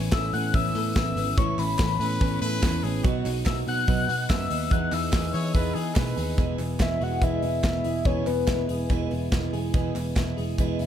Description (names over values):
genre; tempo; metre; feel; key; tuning
jangly indie pop; 144 BPM; 4/4; straight; E major; A4 = 440 Hz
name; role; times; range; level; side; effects
clear trumpet; second line; 0.0-6.4 s; F#4 to C#5; -34 LUFS; left 2 dB; none
picked steel-string acoustic guitar; accompaniment; 0.0-10.9 s; E2 to G#4; -33 LUFS; right 7 dB; none
twelve-string electric guitar; arpeggios; 0.0-10.9 s; E3 to A4; -32 LUFS; left 1 dB; none
vintage muted picked electric bass; bass; 0.0-10.9 s; E1 to E3; -29 LUFS; equal; none
soft octave-layered synth lead; melody; 0.1-9.1 s; B4 to F#6; -29 LUFS; left 4 dB; chorus, ping-pong delay
modern studio drum kit; drums; 0.1-10.9 s; hi-hat, kick drum, snare drum; -27 LUFS; equal; none
group handclap; percussion; 0.1-10.3 s; none; -42 LUFS; right 3 dB; none
room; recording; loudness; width
light reverb; none; -23 LUFS; side -10 dB against mid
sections
0.0-6.4 A section; 6.4-10.9 B section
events
none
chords
0.0 Aadd9; 3.0 B; 4.7 Emaj7; 6.4 E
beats
0.13 0.54 0.96 | 1.38 1.80 2.21 2.63 | 3.05 3.46 3.88 4.29 | 4.71 5.13 5.55 5.96 | 6.38 6.80 7.22 7.64 | 8.06 8.48 8.90 9.32 | 9.74 10.16 10.58